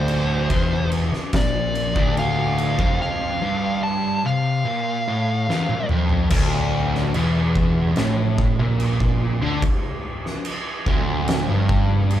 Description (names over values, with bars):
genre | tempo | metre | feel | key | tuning
stoner and doom metal | 72 BPM | 4/4 | straight | D minor | A4 = 440 Hz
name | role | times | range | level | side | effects
fuzz lead guitar | melody | 0.0-5.9 s | C5 to A5 | -25 LUFS | equal | distortion
fuzz guitar | riff | 0.0-12.2 s | D2 to D3 | -22 LUFS | equal | distortion
overdriven picked electric bass | bass | 0.0-12.2 s | D1 to D2 | -24 LUFS | equal | none
oversized low-tuned drum kit | drums | 0.1-12.2 s | crash cymbal, kick drum, snare drum, toms | -24 LUFS | equal | none
room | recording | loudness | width
light reverb | band playing live in one room | -18 LUFS | side -11 dB against mid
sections
0.0-6.3 A section; 6.3-12.2 B section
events
drum fill 5.5-6.3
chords
0.0 Dm; 6.3 D5